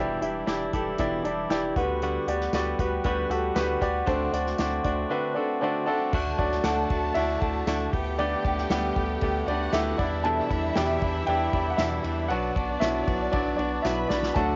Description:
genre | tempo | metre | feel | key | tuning
piano-driven pop | 117 BPM | 4/4 | straight | G major | A4 = 439 Hz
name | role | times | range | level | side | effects
clear baby grand piano | accompaniment | 0.0-14.6 s | D3 to A5 | -30 LUFS | equal | cassette tape
direct-recorded clean electric guitar | riff | 0.0-14.6 s | E2 to G4 | -32 LUFS | equal | cassette tape
round analog bass | bass | 0.0-14.6 s | E1 to E2 | -35 LUFS | equal | none
unplugged drum kit | drums | 0.2-14.5 s | crash cymbal, hi-hat, kick drum, ride cymbal, snare drum | -35 LUFS | equal | cassette tape
tambourine | percussion | 2.5-14.0 s | none | -48 LUFS | equal | none
warm symphonic violin section | second line | 6.1-14.6 s | D4 to B5 | -35 LUFS | equal | cassette tape
room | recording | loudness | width
light reverb | home recording on cassette, nothing above 7.6 kHz | -26 LUFS | mono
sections
0.0-6.1 A section; 6.1-14.6 B section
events
grand piano fill 1.0-2.0, 5.4-6.1; grand piano solo 6.1-14.6; drum fill 13.8-14.4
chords
0.0 Em7; 1.8 Gmaj7/D; 4.1 D7; 6.1 D; 7.9 Gadd9/D; 10.0 Em7; 12.3 Bm

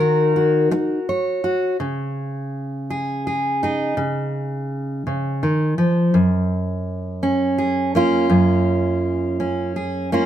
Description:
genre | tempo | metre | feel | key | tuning
folk, solo fingerstyle acoustic guitar | 55 BPM (dotted quarters) | 6/8 | straight | Db major | A4 = 437 Hz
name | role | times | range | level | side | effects
fingerpicked steel-string acoustic guitar | solo | 0.0-10.3 s | Gb2 to Db5 | -18 LUFS | equal | none
room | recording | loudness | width
light reverb | none | -18 LUFS | side -11 dB against mid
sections
0.0-1.8 A section; 1.8-10.3 B section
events
none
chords
0.0 Ebm7; 1.8 Dbsus2; 6.1 Gbmaj7(no3)

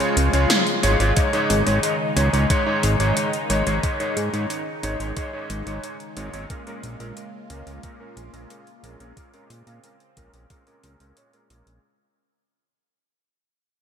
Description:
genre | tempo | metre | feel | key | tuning
synthwave | 90 BPM | 4/4 | straight | Bb minor | A4 = 440 Hz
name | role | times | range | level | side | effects
phased analog pad | sustained chords | 0.0-11.8 s | Db3 to F4 | -28 LUFS | left 2 dB | phaser, chorus, sidechain pumping
bright electric grand piano | stabs | 0.0-11.8 s | Ab2 to Db5 | -24 LUFS | equal | ensemble chorus, low-pass filter, digital delay
80s electronic pad drums | drums | 0.0-11.8 s | hi-hat, snare drum | -25 LUFS | left 1 dB | overdrive, gated reverb
fat analog bass | bass | 0.2-11.8 s | Ab1 to Bb2 | -23 LUFS | equal | sidechain pumping
electronic kick drum | drums | 1.2-10.6 s | none | -24 LUFS | equal | none
room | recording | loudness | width
moderate lush hall reverb, RT60 2.7 s | bright 1980s-style digital production | -19 LUFS | side -8 dB against mid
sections
0.0-11.8 A section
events
fade-out 0.0-11.8; filter sweep on electric grand piano 0.0-11.8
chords
0.0 Db; 1.2 Absus4; 6.5 Bbm7

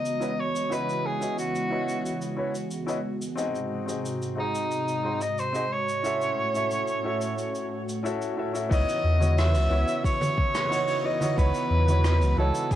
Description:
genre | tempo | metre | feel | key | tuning
sunset chillout | 90 BPM | 4/4 | straight | C# minor | A4 = 440 Hz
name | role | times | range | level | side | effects
clear soprano saxophone | melody | 0.0-12.8 s | D#4 to E5 | -28 LUFS | equal | tape echo
airy breathy pad | sustained chords | 0.0-12.8 s | G#2 to D#5 | -32 LUFS | right 1 dB | chorus, cassette tape
soft brush drum kit | drums | 0.1-12.8 s | cabasa, hi-hat, rim click | -38 LUFS | equal | none
clear baby grand piano | accompaniment | 0.2-12.8 s | B3 to E5 | -31 LUFS | moving between left 4 dB and right 4 dB | auto-pan, vintage 12-bit sampler grit, cassette tape, tape echo
warm sub bass | bass | 8.7-12.5 s | C#2 to E2 | -22 LUFS | equal | none
electronic kick drum | drums | 8.7-12.8 s | none | -25 LUFS | equal | overdrive
congas | percussion | 9.2-12.5 s | none | -33 LUFS | right 2 dB | none
room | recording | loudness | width
moderate studio reverb, RT60 0.6 s | home recording on cassette | -24 LUFS | side -12 dB against mid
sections
0.0-8.7 A section; 8.7-12.8 B section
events
filter sweep on analog synth pad 0.0-8.7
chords
0.0 C#m11; 3.4 G#7; 6.0 A6; 8.7 C#m11

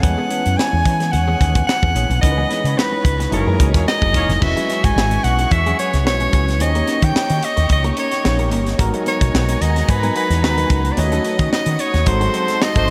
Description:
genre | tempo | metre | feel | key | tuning
polished 1980s jazz-funk pop | 110 BPM | 4/4 | swing 54% on 16ths | unclear | A4 = 441 Hz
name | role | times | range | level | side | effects
bright soprano saxophone | melody | 0.0-12.9 s | A#4 to G#5 | -23 LUFS | equal | none
barky tine electric piano | accompaniment | 0.0-12.9 s | G3 to A#5 | -27 LUFS | equal | analog chorus
muted studio string section | sustained chords | 0.0-12.9 s | G4 to D#6 | -32 LUFS | equal | none
clean electric guitar | riff | 0.0-12.9 s | E3 to A#4 | -31 LUFS | equal | lush chorus
woody fretless electric bass | bass | 0.0-12.9 s | E1 to E3 | -21 LUFS | equal | none
tight funk drum kit | drums | 0.0-12.9 s | crash cymbal, hi-hat, kick drum, snare drum | -23 LUFS | equal | none
clear horn section | second line | 3.3-4.3, 12.3-12.9 s | A3 to C#5 | -31 LUFS | equal | none
room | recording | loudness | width
moderate huge ambient reverb, RT60 5.1 s | dreamy mix soaked in reverb | -17 LUFS | mono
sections
0.0-4.4 A section; 4.4-12.9 B section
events
band accent 2.2-4.4, 11.0-12.9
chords
0.0 E6; 2.2 C#m9; 3.3 F#13; 4.4 E69; 6.6 D#7; 8.8 G#m9; 11.0 D#m7b5; 12.1 G#7b9

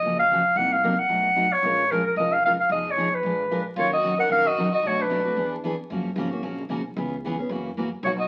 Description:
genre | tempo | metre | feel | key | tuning
acoustic string swing (jazz manouche) | 225 BPM | 4/4 | swing 56% on 8ths | Bb minor, Eb minor from 3.8 s | A4 = 440 Hz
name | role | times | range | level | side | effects
clear clarinet | melody | 0.0-5.5, 8.0-8.3 s | Bb4 to Gb5 | -24 LUFS | equal | none
picked steel-string acoustic guitar | accompaniment | 0.0-8.2 s | B2 to Bb4 | -31 LUFS | equal | none
upright bass | bass | 0.0-8.3 s | F1 to Gb2 | -40 LUFS | equal | none
rich violin | second line | 3.8-5.5, 8.1-8.3 s | D4 to Bb4 | -32 LUFS | equal | none
room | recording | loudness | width
wet studio reverb, RT60 0.7 s | very old 78 rpm record, vinyl crackle | -24 LUFS | mono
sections
0.0-3.8 A section; 3.8-8.3 B section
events
none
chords
0.0 Gbmaj7; 0.6 Cm7b5; 1.1 B7; 1.6 Bbm7; 2.7 Fm7b5; 3.2 Bb7; 3.8 Ebm7; 4.8 Bm7; 5.4 E7; 5.9 Gbmaj7; 7.0 Dbm7; 7.5 Gb7

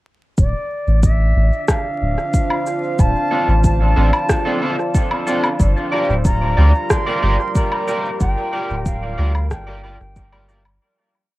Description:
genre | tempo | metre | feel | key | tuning
ambient dub | 92 BPM | 4/4 | straight | G minor | A4 = 435 Hz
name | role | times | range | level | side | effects
mellow concert flute | melody | 0.4-10.4 s | D5 to C6 | -24 LUFS | right 1 dB | cassette tape, dub echo
deep dark ambient pad | sustained chords | 1.3-10.8 s | G3 to F5 | -25 LUFS | equal | chorus, built-in reverb, cassette tape
soft dub sub bass | bass | 0.4-10.8 s | D1 to D2 | -16 LUFS | equal | none
electronic cabasa, rim click and woodblock | drums | 0.4-10.8 s | none | -24 LUFS | equal | dub echo
electronic kick drum | drums | 0.4-10.3 s | none | -17 LUFS | equal | overdrive
electric guitar at the edge of break-up | stabs | 3.3-10.6 s | C4 to D5 | -23 LUFS | right 1 dB | analog chorus, cassette tape, dub echo
room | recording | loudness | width
light reverb | home recording on cassette, vinyl crackle | -15 LUFS | side -18 dB against mid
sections
0.4-10.8 groove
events
fade-out 7.3-10.8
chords
0.4 Dm7; 5.6 Gm7

